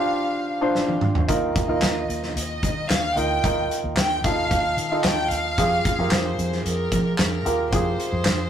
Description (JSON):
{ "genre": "piano-driven pop", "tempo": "112 BPM", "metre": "4/4", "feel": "straight", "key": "unclear", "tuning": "A4 = 438 Hz", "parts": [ { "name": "warm chamber violin section", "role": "melody", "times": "0.0-8.5 s", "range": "Bb4 to G5", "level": "-26 LUFS", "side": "left 1 dB", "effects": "none" }, { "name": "warm upright piano", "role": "accompaniment", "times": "0.0-8.5 s", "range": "D3 to C5", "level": "-25 LUFS", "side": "right 1 dB", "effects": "none" }, { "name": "loose indie drum kit", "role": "drums", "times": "0.8-8.4 s", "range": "handclaps, hi-hat, kick drum, snare drum, toms", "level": "-24 LUFS", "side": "equal", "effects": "none" }, { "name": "vintage muted fingered electric bass", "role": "bass", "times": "1.3-8.5 s", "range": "D2 to F3", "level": "-28 LUFS", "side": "equal", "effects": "none" } ], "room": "moderate small room reverb, RT60 0.5 s", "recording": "rough rehearsal-room recording, tube saturation", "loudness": "-20 LUFS", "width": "side -9 dB against mid", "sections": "0.0-8.5 A section", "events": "drum fill 0.8-1.3", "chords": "0.0 Dm7; 1.3 Ebsus2; 5.6 Fmadd9", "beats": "0.21 0.75 | 1.29 1.82 2.36 2.90 | 3.43 3.97 4.51 5.04 | 5.58 6.12 6.65 7.19 | 7.73 8.27" }